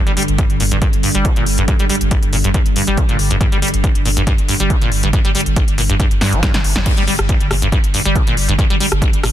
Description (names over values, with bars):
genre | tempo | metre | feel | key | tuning
driving peak-time techno | 139 BPM | 4/4 | straight | G minor | A4 = 440 Hz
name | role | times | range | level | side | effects
deep dark ambient pad | drone | 0.0-9.3 s | G2 to D3 | -23 LUFS | equal | chorus, built-in reverb, sidechain pumping
acid bass, saw | riff | 0.1-9.3 s | G1 to G3 | -19 LUFS | equal | lush chorus, sidechain pumping, dub echo
saturated sub bass | bass | 0.1-9.3 s | G1 | -19 LUFS | equal | sidechain pumping, low-pass filter
techno drum kit | drums | 0.1-9.3 s | crash cymbal, hi-hat, rim click, snare drum | -21 LUFS | left 1 dB | sidechain pumping on hats, sidechain pumping on cymbals
electronic kick drum | drums | 0.4-9.1 s | none | -16 LUFS | equal | none
room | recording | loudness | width
digital ambience | dense, heavily limited modern master | -13 LUFS | side -12 dB against mid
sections
0.0-6.9 A section; 6.9-9.3 B section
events
drum fill 6.2-6.9; band accent 6.8; drop 6.9-9.3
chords
0.0 G5